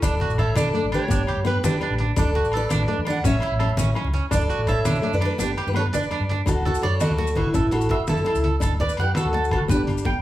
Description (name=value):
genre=highlife guitar band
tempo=112 BPM (dotted quarters)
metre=12/8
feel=straight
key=D major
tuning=A4 = 440 Hz
part: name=picked steel-string acoustic guitar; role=melody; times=0.0-10.1 s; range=D4 to F#5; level=-25 LUFS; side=equal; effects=none
part: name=fingerpicked steel-string acoustic guitar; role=accompaniment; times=0.0-10.2 s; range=A3 to E4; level=-30 LUFS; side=left 4 dB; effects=none
part: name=electric guitar at the edge of break-up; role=arpeggios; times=0.0-10.2 s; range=C#4 to G5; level=-28 LUFS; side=right 5 dB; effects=none
part: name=hollow-body short-scale fingered electric bass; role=bass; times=0.0-10.0 s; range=E1 to D3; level=-25 LUFS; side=equal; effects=none
part: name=trip hop sampler-style drum kit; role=drums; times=0.0-10.1 s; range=hi-hat, kick drum, snare drum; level=-27 LUFS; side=equal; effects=none
part: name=agogo bells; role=percussion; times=0.0-10.2 s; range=none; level=-36 LUFS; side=left 3 dB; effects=none
part: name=congas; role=percussion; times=0.0-10.2 s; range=none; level=-31 LUFS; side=left 2 dB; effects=none
part: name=maracas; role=percussion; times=0.0-10.1 s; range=none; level=-37 LUFS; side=left 7 dB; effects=none
part: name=growling alto saxophone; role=second line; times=6.5-10.1 s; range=D4 to B4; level=-33 LUFS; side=left 1 dB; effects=none
room=moderate large studio reverb, RT60 0.9 s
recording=band playing live in one room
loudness=-20 LUFS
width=side -14 dB against mid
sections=0.0-6.5 A section; 6.5-10.2 B section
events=break 5.4-6.5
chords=0.0 D5; 1.1 G; 2.2 D5; 3.2 A; 4.3 D; 5.4 G; 6.5 D; 7.5 A; 8.6 D; 9.7 G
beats=| 0.03 0.56 1.10 1.64 | 2.17 2.71 3.25 3.79 | 4.32 4.86 5.39 5.93 | 6.47 7.01 7.54 8.08 | 8.62 9.16 9.69